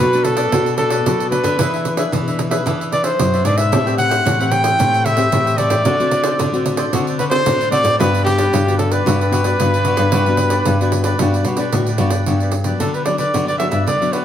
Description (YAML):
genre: samba and choro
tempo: 112 BPM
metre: 4/4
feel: straight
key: G major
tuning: A4 = 440 Hz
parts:
  - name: warm trumpet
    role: melody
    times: 0.0-14.2 s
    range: G4 to G5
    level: -18 LUFS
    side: equal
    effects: tape echo
  - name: cavaquinho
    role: accompaniment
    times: 0.0-14.2 s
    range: D4 to G5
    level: -27 LUFS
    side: right 1 dB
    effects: none
  - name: nylon-string guitar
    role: accompaniment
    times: 0.0-14.2 s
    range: G2 to B4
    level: -23 LUFS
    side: left 3 dB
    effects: none
  - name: nylon-string guitar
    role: bass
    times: 0.0-14.2 s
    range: F#2 to E3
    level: -19 LUFS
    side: equal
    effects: none
  - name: pandeiro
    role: percussion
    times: 0.1-14.2 s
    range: none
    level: -22 LUFS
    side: right 3 dB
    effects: none
room: wet studio reverb, RT60 0.8 s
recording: heard from further back in the room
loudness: -14 LUFS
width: side -10 dB against mid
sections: 0.0-12.3 A section; 12.3-14.2 B section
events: none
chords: 0.0 Bm7; 1.6 E7; 3.7 Am9; 5.9 D7; 8.0 Gmaj7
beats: 0.53 1.06 | 1.59 2.13 2.66 3.20 | 3.73 4.26 4.80 5.33 | 5.86 6.40 6.93 7.46 | 8.00 8.53 9.06 9.60 | 10.13 10.66 11.20 11.73 | 12.27 12.80 13.34 13.87